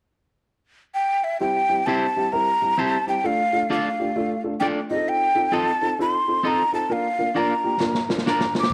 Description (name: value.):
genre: uptempo 1960s-style soul.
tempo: 131 BPM.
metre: 4/4.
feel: swing 62% on 8ths.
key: unclear.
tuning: A4 = 439 Hz.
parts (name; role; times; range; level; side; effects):
breathy mellow jazz flute; melody; 0.9-8.7 s; Eb5 to D6; -24 LUFS; equal; none.
dark concert grand piano; accompaniment; 1.4-8.6 s; G3 to Bb4; -29 LUFS; equal; none.
electric guitar at the edge of break-up; stabs; 1.9-8.4 s; C4 to Eb5; -29 LUFS; equal; none.
snare drum; drums; 7.8-8.7 s; none; -26 LUFS; equal; none.
room: moderate plate reverb, RT60 1.8 s.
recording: none.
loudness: -22 LUFS.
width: mono.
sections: 0.0-1.4 A section; 1.4-8.7 B section.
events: drum fill 7.8-8.7.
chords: 0.0 N.C.; 1.4 C; 3.2 Dm; 4.8 F7; 6.9 Bb.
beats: 0.04 0.50 0.95 | 1.41 1.87 2.33 2.78 | 3.24 3.69 4.15 4.61 | 5.07 5.52 5.98 6.43 | 6.89 7.35 7.80 8.26 | 8.72.